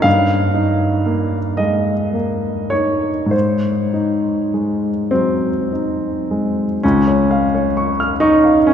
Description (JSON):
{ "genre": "classical, romantic nocturne for solo piano", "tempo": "33-44 BPM (dotted quarters)", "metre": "6/8", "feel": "rubato", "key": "Db major", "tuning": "A4 = 440 Hz", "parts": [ { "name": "warm baby grand piano", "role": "solo", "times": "0.0-8.7 s", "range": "Db2 to F6", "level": "-14 LUFS", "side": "equal", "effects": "none" } ], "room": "wet cathedral reverb, RT60 5.9 s", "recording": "recorded in a church or concert hall", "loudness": "-15 LUFS", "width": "side -8 dB against mid", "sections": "0.0-6.8 A section; 6.8-8.7 B section", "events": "none", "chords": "0.1 Eb/G; 3.3 Ab; 6.8 Db", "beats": "| 0.06 1.60 | 3.33 5.12 | 6.83 8.21" }